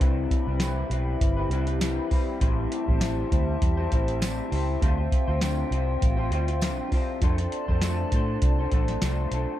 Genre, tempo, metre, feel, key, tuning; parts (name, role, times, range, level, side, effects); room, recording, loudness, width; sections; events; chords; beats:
indie pop, bedroom pop; 100 BPM; 4/4; swing 55% on 16ths; C major; A4 = 441 Hz
electric guitar through a small old amp; accompaniment; 0.0-9.6 s; A2 to C5; -30 LUFS; left 3 dB; analog chorus, vibrato effect
warbly tape-like pad; sustained chords; 0.0-9.6 s; C4 to B5; -35 LUFS; right 2 dB; chorus, built-in reverb
vintage muted fingered electric bass; bass; 0.0-9.4 s; G1 to A2; -27 LUFS; equal
soft vintage rhythm box; drums; 0.0-9.5 s; hi-hat, kick drum, snare drum; -25 LUFS; equal
tambourine; percussion; 0.6-9.2 s; -42 LUFS; right 9 dB
digital ambience; dark, warm production; -23 LUFS; side -13 dB against mid
0.0-9.6 A section
0.0 Cmaj7; 2.4 Am7; 4.8 Dm11; 7.2 F6
| 0.01 0.61 1.21 1.81 | 2.41 3.01 3.61 4.21 | 4.82 5.42 6.02 6.62 | 7.22 7.82 8.42 9.02